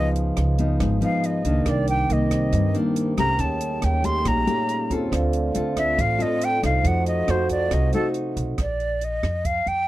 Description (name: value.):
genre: bossa nova.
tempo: 139 BPM.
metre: 4/4.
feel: straight.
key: Bb major.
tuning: A4 = 439 Hz.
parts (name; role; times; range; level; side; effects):
breathy concert flute; melody; 0.0-9.9 s; A4 to C6; -24 LUFS; equal; none.
nylon-string guitar; accompaniment; 0.0-8.6 s; G2 to A4; -25 LUFS; left 2 dB; none.
vibraphone with soft mallets; accompaniment; 0.0-8.6 s; Bb3 to D6; -31 LUFS; right 5 dB; none.
upright bass; bass; 0.0-9.9 s; Ab1 to G2; -24 LUFS; right 1 dB; none.
compact cocktail drum kit; drums; 0.2-9.8 s; hi-hat, kick drum, rim click; -30 LUFS; right 1 dB; none.
mellow French horn section; sustained chords; 1.7-8.6 s; C3 to Gb4; -32 LUFS; right 1 dB; none.
room: little or no reverb.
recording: dry, close 1970s-style studio recording.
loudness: -20 LUFS.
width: side -15 dB against mid.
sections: 0.0-8.6 A section; 8.6-9.9 B section.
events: flute solo 0.0-8.6.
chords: 0.0 Db9; 1.7 Cm9; 3.4 Eb7#11; 5.1 Dm7; 6.8 F7b9; 8.6 Bb.